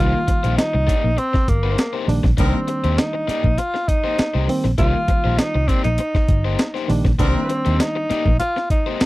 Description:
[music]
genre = funk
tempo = 100 BPM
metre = 4/4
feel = straight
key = C minor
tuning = A4 = 440 Hz
[part]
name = breathy tenor saxophone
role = melody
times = 0.0-9.1 s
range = Bb3 to F4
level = -22 LUFS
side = equal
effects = none
[part]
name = overdriven electric guitar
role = accompaniment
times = 0.0-9.0 s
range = Bb3 to D5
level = -26 LUFS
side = left 8 dB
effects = none
[part]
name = barky reed electric piano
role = stabs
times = 0.0-8.1 s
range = Eb3 to F4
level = -24 LUFS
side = right 2 dB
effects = overdrive
[part]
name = vintage muted fingered electric bass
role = bass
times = 0.0-9.0 s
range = G1 to Eb2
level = -20 LUFS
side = equal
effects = none
[part]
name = breakbeat sampler-style drum kit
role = drums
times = 0.3-9.1 s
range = hi-hat, kick drum, snare drum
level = -20 LUFS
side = equal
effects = none
[part]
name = clear horn section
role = second line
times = 2.4-2.6, 7.2-7.6 s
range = G3 to Bb4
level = -27 LUFS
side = left 1 dB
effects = none
[sound]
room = light reverb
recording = dry, close 1970s-style studio recording, faint mains hum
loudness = -16 LUFS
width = side -18 dB against mid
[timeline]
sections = 0.0-9.1 A section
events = none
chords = 0.0 Cm7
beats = 0.58 1.18 1.78 | 2.38 2.98 3.58 4.18 | 4.79 5.39 5.99 6.59 | 7.20 7.80 8.40 9.01

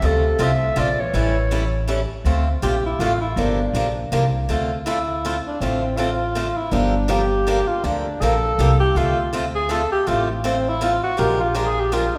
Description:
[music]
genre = acoustic string swing (jazz manouche)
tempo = 161 BPM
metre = 3/4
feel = swing 61% on 8ths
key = D minor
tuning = A4 = 439 Hz
[part]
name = growling clarinet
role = melody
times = 0.0-1.9 s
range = A4 to E5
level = -25 LUFS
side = equal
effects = none
[part]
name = breathy tenor saxophone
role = second line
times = 0.0-12.2 s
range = C3 to A4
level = -25 LUFS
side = equal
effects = none
[part]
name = picked swing-style acoustic guitar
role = accompaniment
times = 0.0-12.0 s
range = D3 to Bb4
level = -26 LUFS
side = equal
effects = none
[part]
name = upright bass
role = bass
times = 0.0-12.1 s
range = G1 to D2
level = -25 LUFS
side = equal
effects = none
[sound]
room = wet recital hall reverb, RT60 1.7 s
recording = recorded in a church or concert hall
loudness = -20 LUFS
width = mono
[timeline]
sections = 0.0-2.3 A section; 2.3-12.2 B section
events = tenor saxophone solo 2.3-12.2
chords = 0.0 Dm9; 1.1 A7; 2.3 Dm7; 3.4 Gm7; 4.5 Dm9; 6.7 Gm9; 9.0 Dm7; 11.2 Bb7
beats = | 0.02 0.40 0.77 | 1.14 1.51 1.89 | 2.26 2.63 3.00 | 3.37 3.75 4.12 | 4.49 4.86 5.24 | 5.61 5.98 6.35 | 6.72 7.09 7.47 | 7.84 8.21 8.58 | 8.96 9.33 9.70 | 10.07 10.44 10.82 | 11.19 11.56 11.93

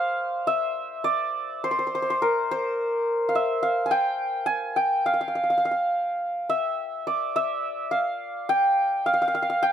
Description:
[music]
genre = indian classical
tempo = 105 BPM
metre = 4/4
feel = straight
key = C raga charukeshi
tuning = A4 = 440 Hz
[part]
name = santur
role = solo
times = 0.0-9.7 s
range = Bb4 to Ab5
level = -22 LUFS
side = equal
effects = none
[sound]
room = little or no reverb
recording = close, detailed microphones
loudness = -22 LUFS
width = side -9 dB against mid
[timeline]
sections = 0.0-9.7 A section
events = none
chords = none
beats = | 0.47 1.04 1.61 2.19 | 2.76 3.34 3.91 4.48 | 5.06 5.63 6.20 6.77 | 7.34 7.91 8.48 9.05 | 9.62

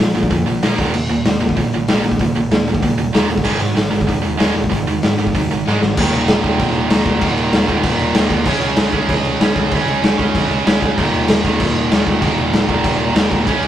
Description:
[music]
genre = punk rock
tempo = 192 BPM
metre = 4/4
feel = straight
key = unclear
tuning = A4 = 440 Hz
[part]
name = sludgy distorted guitar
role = riff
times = 0.0-13.7 s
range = Eb2 to Db4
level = -25 LUFS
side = left 6 dB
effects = none
[part]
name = tight distorted guitar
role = riff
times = 0.0-13.7 s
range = Eb2 to Db4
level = -18 LUFS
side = right 4 dB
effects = distortion
[part]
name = overdriven picked electric bass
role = bass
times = 0.0-13.7 s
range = Eb1 to Bb2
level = -26 LUFS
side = equal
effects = none
[part]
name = raw garage drum kit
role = drums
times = 0.0-13.7 s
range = crash cymbal, hi-hat, kick drum, snare drum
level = -16 LUFS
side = left 1 dB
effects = none
[sound]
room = light reverb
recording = rough rehearsal-room recording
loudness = -14 LUFS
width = side -11 dB against mid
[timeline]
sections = 0.0-6.0 A section; 6.0-13.7 B section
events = drum fill 5.7-6.0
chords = 0.0 Bb5; 0.8 Eb5; 3.5 Ab5; 6.0 Eb5; 8.5 Db5; 11.0 Eb5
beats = 0.31 0.62 | 0.94 1.25 1.56 1.88 | 2.19 2.51 2.82 3.14 | 3.45 3.77 4.08 4.39 | 4.71 5.02 5.34 5.65 | 5.96 6.28 6.59 6.90 | 7.22 7.53 7.84 8.15 | 8.47 8.78 9.09 9.40 | 9.72 10.03 10.34 10.65 | 10.97 11.28 11.59 11.91 | 12.22 12.53 12.84 13.15 | 13.47

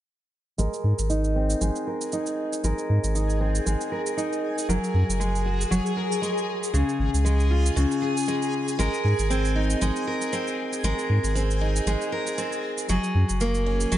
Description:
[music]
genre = folktronica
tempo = 117 BPM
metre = 4/4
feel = swing 56% on 16ths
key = Ab mixolydian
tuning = A4 = 440 Hz
[part]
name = picked steel-string acoustic guitar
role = arpeggios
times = 0.6-14.0 s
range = Db3 to Bb4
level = -26 LUFS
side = equal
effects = low-pass filter, ping-pong delay
[part]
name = warm sub bass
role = bass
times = 0.6-14.0 s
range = Gb1 to Ab2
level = -23 LUFS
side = equal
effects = none
[part]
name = shaker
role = drums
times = 0.6-14.0 s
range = none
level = -34 LUFS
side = right 4 dB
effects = none
[part]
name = backwards swelling texture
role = texture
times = 2.2-14.0 s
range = Ab4 to Ab5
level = -32 LUFS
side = equal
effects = built-in reverb
[sound]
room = light reverb, digital ambience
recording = nothing above 10.9 kHz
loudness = -22 LUFS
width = side -12 dB against mid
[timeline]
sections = 0.6-14.0 A section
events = filter sweep on steel-string acoustic guitar 0.6-14.0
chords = 0.6 Abadd9; 4.7 Gbadd9; 6.7 Db; 8.8 Abadd9; 12.9 Gbadd9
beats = | 0.59 1.10 1.61 2.13 | 2.64 3.15 3.67 4.18 | 4.69 5.21 5.72 6.23 | 6.74 7.26 7.77 8.28 | 8.79 9.31 9.82 10.33 | 10.85 11.36 11.87 12.38 | 12.90 13.41 13.92

